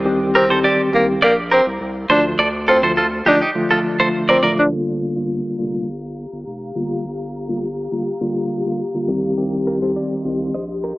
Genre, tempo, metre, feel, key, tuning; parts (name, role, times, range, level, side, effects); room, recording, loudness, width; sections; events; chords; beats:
afrobeats; 103 BPM; 4/4; straight; G minor; A4 = 440 Hz
mellow tine electric piano; accompaniment; 0.0-10.5 s; D3 to G4; -20 LUFS; equal; medium stereo tremolo
saturated sub bass; bass; 0.0-10.9 s; D1 to D2; -28 LUFS; equal
warm tenor saxophone; melody; 0.4-4.7 s; Bb3 to D4; -18 LUFS; equal; tape echo
direct-recorded clean electric guitar; riff; 0.4-4.5, 9.7-10.9 s; Eb4 to Eb5; -18 LUFS; right 1 dB; spring reverb
ethereal airy pad; sustained chords; 5.7-11.0 s; G4 to C6; -28 LUFS; left 2 dB; ensemble chorus, built-in reverb
light reverb; low-pass filter, AM radio sound; -16 LUFS; side -20 dB against mid
0.0-4.7 A section; 4.7-11.0 B section
filter sweep 4.7-11.0
0.0 Cm; 2.1 Dm; 4.7 Gm7; 9.1 Cm
| 0.05 0.64 1.22 1.80 | 2.38 2.97 3.55 4.13 | 4.71 5.30 5.88 6.46 | 7.04 7.63 8.21 8.79 | 9.37 9.96 10.54